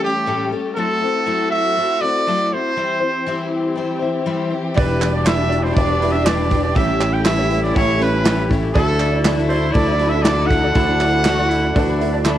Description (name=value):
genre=indie folk with a building arrangement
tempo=120 BPM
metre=4/4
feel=straight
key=unclear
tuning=A4 = 440 Hz
part: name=clear trumpet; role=melody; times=0.0-12.2 s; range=G4 to G5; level=-20 LUFS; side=right 1 dB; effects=cassette tape
part: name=picked twelve-string acoustic guitar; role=accompaniment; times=0.0-12.4 s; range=A2 to C5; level=-24 LUFS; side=left 5 dB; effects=cassette tape
part: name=dark chamber string section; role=sustained chords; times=0.0-12.4 s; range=D3 to A4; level=-26 LUFS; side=equal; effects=cassette tape
part: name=warm cello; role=second line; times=4.8-12.4 s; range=D4 to F#4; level=-25 LUFS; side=left 5 dB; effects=cassette tape
part: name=dark upright piano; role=accompaniment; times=4.8-12.4 s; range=A1 to E5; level=-26 LUFS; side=right 8 dB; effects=cassette tape
part: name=open-back banjo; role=arpeggios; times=4.8-12.4 s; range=C#4 to D5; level=-27 LUFS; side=right 4 dB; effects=cassette tape
part: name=fingered electric bass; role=bass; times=4.8-12.4 s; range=E1 to D2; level=-21 LUFS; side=equal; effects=none
part: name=natural country drum kit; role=drums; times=4.8-12.4 s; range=hi-hat, kick drum, snare drum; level=-20 LUFS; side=equal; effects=cassette tape
part: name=group handclap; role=percussion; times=5.0-12.4 s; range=none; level=-25 LUFS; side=right 5 dB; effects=none
room=light reverb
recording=home recording on cassette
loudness=-15 LUFS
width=side -12 dB against mid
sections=0.0-12.4 A section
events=none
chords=0.0 A7; 0.8 F#m7b5; 2.8 C/E; 4.8 Em7; 6.8 A7; 8.8 Dadd9